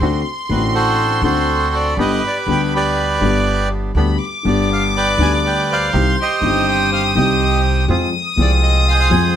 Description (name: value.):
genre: tango.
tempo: 122 BPM.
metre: 4/4.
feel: rubato.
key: unclear.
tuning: A4 = 440 Hz.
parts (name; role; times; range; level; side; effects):
warm chamber violin section; second line; 0.0-9.4 s; B5 to Eb6; -22 LUFS; left 3 dB; none.
dark upright piano; accompaniment; 0.0-9.4 s; G1 to Ab4; -20 LUFS; left 4 dB; none.
bandoneon; stabs; 0.0-9.4 s; B3 to Ab4; -28 LUFS; right 5 dB; none.
upright bass; bass; 0.0-9.4 s; G1 to F2; -19 LUFS; right 1 dB; none.
bandoneon; melody; 0.5-9.4 s; F#4 to Ab5; -18 LUFS; right 3 dB; none.
room: light reverb.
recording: close, detailed microphones.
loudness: -14 LUFS.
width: side -9 dB against mid.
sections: 0.0-9.4 A section.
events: none.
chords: 0.0 D7; 2.0 G; 5.9 Cm; 7.9 Fm.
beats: | 0.02 0.51 1.00 1.49 | 1.98 2.48 2.97 3.46 | 3.96 4.45 4.94 5.43 | 5.93 6.42 6.91 7.40 | 7.89 8.38 8.87.